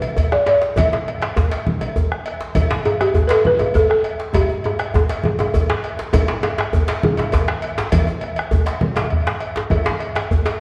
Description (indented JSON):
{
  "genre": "west african traditional, West African drum ensemble",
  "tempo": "134 BPM (dotted quarters)",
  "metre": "12/8",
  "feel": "straight",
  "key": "G major pentatonic",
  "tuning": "A4 = 436 Hz",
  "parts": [
    { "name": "balafon", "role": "melody", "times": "0.0-5.8 s", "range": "G4 to E5", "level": "-20 LUFS", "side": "equal", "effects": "none" },
    { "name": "cowbell", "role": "percussion", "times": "0.0-10.6 s", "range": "none", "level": "-30 LUFS", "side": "equal", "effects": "none" },
    { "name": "djembe", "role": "percussion", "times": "0.0-10.6 s", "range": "none", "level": "-27 LUFS", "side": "equal", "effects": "none" },
    { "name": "bombo", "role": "percussion", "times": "0.2-10.4 s", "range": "none", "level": "-24 LUFS", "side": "equal", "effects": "none" },
    { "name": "congas", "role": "percussion", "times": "0.3-10.1 s", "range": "none", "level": "-26 LUFS", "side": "equal", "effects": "none" },
    { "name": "djembe", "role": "percussion", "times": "0.3-10.6 s", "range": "none", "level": "-25 LUFS", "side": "equal", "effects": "none" }
  ],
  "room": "wet recital hall reverb, RT60 1.4 s",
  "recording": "worn, warbling old tape, cassette tape, warbly pitch drift",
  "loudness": "-19 LUFS",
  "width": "mono",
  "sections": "0.0-6.1 A section; 6.1-10.6 B section",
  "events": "drum fill 4.3-6.1",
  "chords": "none"
}